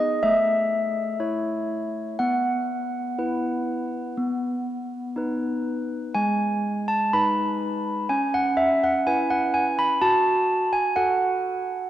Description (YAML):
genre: classical, tune for handbells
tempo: 62 BPM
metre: 4/4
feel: straight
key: unclear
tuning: A4 = 440 Hz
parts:
  - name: handbells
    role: solo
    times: 0.0-11.9 s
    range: G#3 to B5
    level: -22 LUFS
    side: equal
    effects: none
room: wet church reverb, RT60 3.5 s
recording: dark, warm production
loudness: -22 LUFS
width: side -12 dB against mid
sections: 0.0-11.9 A section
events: none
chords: 0.2 A; 2.2 Bsus4; 4.2 B; 6.2 G#m; 8.1 C#m7; 10.0 F#m